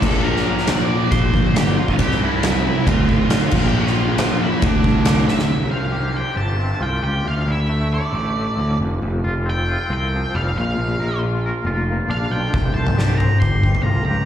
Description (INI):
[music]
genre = quiet-loud alternative rock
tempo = 136 BPM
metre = 4/4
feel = straight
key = unclear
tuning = A4 = 439 Hz
[part]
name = octave-fuzz lead guitar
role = melody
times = 0.0-14.3 s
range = D4 to D6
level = -26 LUFS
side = right 1 dB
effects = distortion, slapback echo, tape echo
[part]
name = fuzz guitar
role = riff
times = 0.0-5.5 s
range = D2 to C4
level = -24 LUFS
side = left 8 dB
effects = distortion, slapback echo
[part]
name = thick fuzz guitar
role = riff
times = 0.0-5.5 s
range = D2 to C4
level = -23 LUFS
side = right 6 dB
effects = distortion
[part]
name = thick fuzz guitar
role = riff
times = 0.0-5.5 s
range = D2 to C4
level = -25 LUFS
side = equal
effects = none
[part]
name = fuzz picked electric bass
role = bass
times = 0.0-14.2 s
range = F1 to D2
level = -22 LUFS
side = equal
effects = overdrive
[part]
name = oversized low-tuned drum kit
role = drums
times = 0.0-5.5, 12.5-13.8 s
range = crash cymbal, kick drum, ride cymbal, snare drum, toms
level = -20 LUFS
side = equal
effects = none
[part]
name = twangy electric guitar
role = arpeggios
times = 5.5-14.3 s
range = D2 to C5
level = -26 LUFS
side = left 1 dB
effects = tremolo, slapback echo, tape echo
[sound]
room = small room ambience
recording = live gig heard through the venue's PA, recital hall reverb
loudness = -16 LUFS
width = side -10 dB against mid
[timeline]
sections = 0.0-5.5 A section; 5.5-14.3 B section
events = drum fill 5.3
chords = 0.0 Bbsus2; 2.0 C; 2.9 Dm; 3.5 Bb5; 4.6 D5; 5.5 Csus4; 7.3 Dsus2; 8.8 Fsus2; 10.6 Bb; 12.5 Csus4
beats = | 0.23 0.67 1.10 1.54 | 1.98 2.42 2.86 3.30 | 3.74 4.18 4.62 5.06 | 5.50 5.94 6.38 6.82 | 7.26 7.70 8.14 8.58 | 9.02 9.46 9.90 10.34 | 10.78 11.22 11.66 12.10 | 12.54 12.97 13.41 13.85